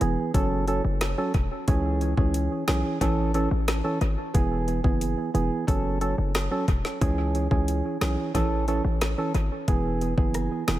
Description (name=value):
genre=dancehall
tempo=90 BPM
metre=4/4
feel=straight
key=C# minor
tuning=A4 = 439 Hz
part: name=percussive organ stab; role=accompaniment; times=0.0-10.8 s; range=E3 to A4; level=-26 LUFS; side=right 2 dB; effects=chorus, analog delay
part: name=hard-hitting 808-style bass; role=bass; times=0.0-10.8 s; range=E1 to C#2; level=-26 LUFS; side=left 1 dB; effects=none
part: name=island pop drum kit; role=drums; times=0.0-10.8 s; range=hi-hat, kick drum, rim click, snare drum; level=-27 LUFS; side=left 1 dB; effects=analog delay
room=light reverb, digital ambience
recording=echo-heavy mix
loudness=-23 LUFS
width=side -14 dB against mid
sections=0.0-10.8 A section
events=none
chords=0.3 F#m; 1.7 C#m; 3.0 A; 4.3 E; 5.7 F#m; 7.0 C#m; 8.3 A; 9.7 E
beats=0.35 1.01 | 1.68 2.35 3.01 3.68 | 4.35 5.01 5.68 6.35 | 7.01 7.68 8.35 9.01 | 9.68 10.35